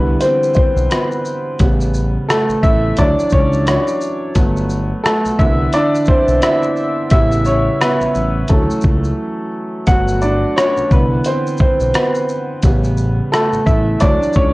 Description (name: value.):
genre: lo-fi hip hop.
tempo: 87 BPM.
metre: 4/4.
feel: swing 57% on 16ths.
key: D major.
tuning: A4 = 439 Hz.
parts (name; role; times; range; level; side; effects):
warm upright piano; accompaniment; 0.0-14.5 s; C#3 to F#5; -15 LUFS; equal; cassette tape, low-pass filter, plate reverb.
smooth gliding synth bass; bass; 0.0-14.5 s; G1 to D2; -18 LUFS; equal; tube saturation.
dusty soul sampler-style drum kit; drums; 0.2-14.5 s; hi-hat, kick drum, rim click, shaker; -16 LUFS; equal; none.
room: moderate small room reverb, RT60 0.5 s.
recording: worn, warbling old tape, cassette tape, warbly pitch drift.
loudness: -13 LUFS.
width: side -21 dB against mid.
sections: 0.0-14.5 A section.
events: upright piano solo 0.0-14.5; break 9.2-9.9.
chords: 0.0 Cmaj7; 1.6 A7; 3.0 Dmaj7; 4.4 Gmaj9; 5.4 Cmaj7; 7.1 A7; 8.5 Dmaj7; 9.9 Gmaj9; 10.9 Cmaj7; 12.6 A7; 14.0 Dmaj7.